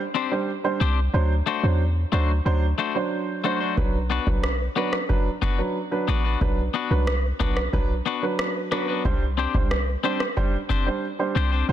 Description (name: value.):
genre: dancehall.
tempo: 91 BPM.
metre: 4/4.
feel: straight.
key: unclear.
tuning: A4 = 440 Hz.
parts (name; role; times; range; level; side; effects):
clean electric guitar; arpeggios; 0.1-11.7 s; A3 to C5; -28 LUFS; left 9 dB; none.
dark baby grand piano; accompaniment; 0.3-11.7 s; F#3 to C5; -27 LUFS; right 4 dB; none.
warm 808-style bass; bass; 0.8-11.7 s; A1 to E2; -23 LUFS; equal; none.
booming analog drum machine; drums; 3.8-10.9 s; kick drum, rim click; -24 LUFS; equal; soft clipping on snare.
room: little or no reverb.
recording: dense, heavily limited modern master.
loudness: -21 LUFS.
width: side -11 dB against mid.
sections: 0.0-11.7 A section.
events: none.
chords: 0.0 Csus2; 1.1 D7; 3.8 Bm; 9.1 Csus2.